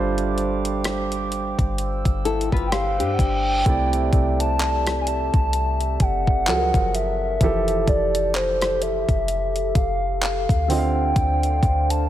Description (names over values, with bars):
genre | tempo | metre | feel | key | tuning
contemporary R&B | 64 BPM | 4/4 | swing 58% on 16ths | C major | A4 = 440 Hz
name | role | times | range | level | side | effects
warm grand piano | accompaniment | 0.0-12.1 s | C3 to F5 | -27 LUFS | right 4 dB | none
glass harmonica | sustained chords | 0.0-12.1 s | C4 to E6 | -29 LUFS | equal | stereo widening
clean 808-style bass | bass | 0.0-12.1 s | F1 to G2 | -25 LUFS | equal | none
clean 12-bit digital drum machine | drums | 0.2-12.1 s | handclaps, hi-hat, kick drum, rim click | -23 LUFS | equal | overdrive
reverse cymbal | sound effects | 2.8-3.7 s | none | -34 LUFS | right 1 dB | none
nylon-string guitar | arpeggios | 2.3-3.6 s | D4 to C5 | -25 LUFS | left 8 dB | ping-pong delay
hollow clarinet-like synth lead | melody | 2.7-12.1 s | C5 to A5 | -24 LUFS | equal | chorus, ping-pong delay
room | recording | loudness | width
studio ambience | none | -19 LUFS | side -12 dB against mid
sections
0.0-3.7 A section; 3.7-12.1 B section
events
reverse cymbal 2.8-3.7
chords
0.0 G7sus4; 3.7 C69; 6.5 F#maj9; 7.4 Fmaj9; 10.7 Dm7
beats
0.84 1.78 2.72 | 3.66 4.59 5.53 6.47 | 7.41 8.35 9.28 10.22 | 11.16